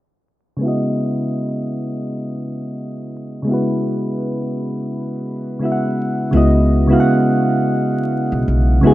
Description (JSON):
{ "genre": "hip hop", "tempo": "84 BPM", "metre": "4/4", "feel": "swing 57% on 16ths", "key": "C# minor", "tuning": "A4 = 440 Hz", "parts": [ { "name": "soft electric-piano-like synth keys", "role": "accompaniment", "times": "0.6-8.9 s", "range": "C#3 to F#5", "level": "-17 LUFS", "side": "equal", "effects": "chorus, cassette tape, low-pass filter" }, { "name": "upright bass", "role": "bass", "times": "6.3-8.9 s", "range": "B1 to D2", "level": "-15 LUFS", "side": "equal", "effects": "none" } ], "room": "moderate lush hall reverb, RT60 2.5 s", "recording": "rough home demo mix, vinyl crackle, low-pass filter", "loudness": "-16 LUFS", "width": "side -16 dB against mid", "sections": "0.6-6.3 A section; 6.3-8.9 B section", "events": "filter sweep 0.6-6.3", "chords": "0.6 C#m11" }